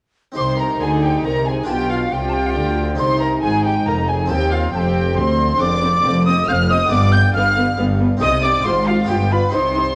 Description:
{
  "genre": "classical, baroque-style concerto movement with solo episodes",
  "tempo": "138 BPM",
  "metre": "3/4",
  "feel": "straight",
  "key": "C minor",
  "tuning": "A4 = 443 Hz",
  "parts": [
    { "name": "harpsichord", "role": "accompaniment", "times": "0.3-10.0 s", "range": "D2 to Ab4", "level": "-28 LUFS", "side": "equal", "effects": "none" },
    { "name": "bright wooden flute", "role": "melody", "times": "0.4-10.0 s", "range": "F5 to G6", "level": "-24 LUFS", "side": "equal", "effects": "none" },
    { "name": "warm studio violin section", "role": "melody", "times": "0.4-10.0 s", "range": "F5 to G6", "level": "-27 LUFS", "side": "equal", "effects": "none" },
    { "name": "warm chamber violin section", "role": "second line", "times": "0.4-10.0 s", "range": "F4 to G5", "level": "-26 LUFS", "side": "equal", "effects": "none" },
    { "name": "dark chamber viola section", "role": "accompaniment", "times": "0.4-9.8 s", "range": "B3 to F4", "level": "-26 LUFS", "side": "equal", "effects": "none" },
    { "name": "warm chamber cello section", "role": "bass", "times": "0.4-9.9 s", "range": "D2 to D3", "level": "-24 LUFS", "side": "equal", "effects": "none" },
    { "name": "warm studio double bass section", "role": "bass", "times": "0.4-9.9 s", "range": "F1 to Eb2", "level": "-25 LUFS", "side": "equal", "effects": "none" }
  ],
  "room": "moderate recital hall reverb, RT60 1.8 s",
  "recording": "worn, warbling old tape, cassette tape, warbly pitch drift",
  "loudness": "-17 LUFS",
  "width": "mono",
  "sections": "0.4-10.0 A section",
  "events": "none",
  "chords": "0.4 Cm; 1.7 G7/B; 3.0 Cm; 5.6 Dm7b5/F; 6.9 G7; 8.2 Cm; 8.7 Fm/Ab; 9.1 G7"
}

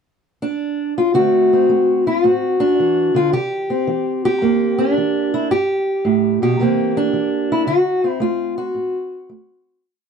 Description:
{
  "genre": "acoustic country blues, solo or duo",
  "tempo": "110 BPM",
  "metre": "4/4",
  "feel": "swing 67% on 8ths",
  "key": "unclear",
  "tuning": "A4 = 436 Hz",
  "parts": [
    { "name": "fingerpicked steel-string acoustic guitar", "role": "solo", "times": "0.4-9.8 s", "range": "G2 to G4", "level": "-15 LUFS", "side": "equal", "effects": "none" }
  ],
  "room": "small room ambience",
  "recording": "dry, close 1970s-style studio recording",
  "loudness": "-15 LUFS",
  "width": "side -6 dB against mid",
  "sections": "0.0-1.1 pickup bar; 1.1-9.8 head",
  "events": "fade-out 7.7-9.8",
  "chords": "0.0 N.C.; 1.1 D7; 3.3 C7; 5.5 G; 6.6 C7; 7.7 D7"
}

